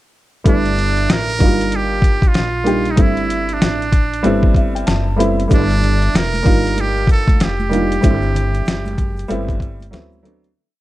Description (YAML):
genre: hip hop, jazz-hop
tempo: 95 BPM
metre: 4/4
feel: swing 62% on 16ths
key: unclear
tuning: A4 = 445 Hz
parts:
  - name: warm upright piano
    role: accompaniment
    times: 0.4-10.5 s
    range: F#3 to B5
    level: -19 LUFS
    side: equal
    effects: none
  - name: trumpet with metal mute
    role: melody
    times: 0.5-9.9 s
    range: D4 to Bb4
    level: -21 LUFS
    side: right 3 dB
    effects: none
  - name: upright bass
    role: bass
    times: 0.5-10.5 s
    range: E1 to D2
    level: -21 LUFS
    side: equal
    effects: none
  - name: boom bap sampler-style drum kit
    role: drums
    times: 0.5-10.6 s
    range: hi-hat, kick drum, snare drum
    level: -15 LUFS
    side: equal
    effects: vintage 12-bit sampler grit
  - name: maracas and congas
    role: percussion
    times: 5.5-10.5 s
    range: none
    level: -30 LUFS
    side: right 2 dB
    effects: none
room: little or no reverb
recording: dark, warm production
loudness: -14 LUFS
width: side -16 dB against mid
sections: 0.5-10.6 head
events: upright piano fill 4.2-5.5; fade-out 8.0-10.6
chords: 0.5 G6; 1.4 Ebmaj9/G; 3.0 C69/G; 4.2 Am9/G; 5.5 G6; 6.5 Ebmaj9/G; 8.0 C69/G; 9.3 Am9/G; 9.9 D13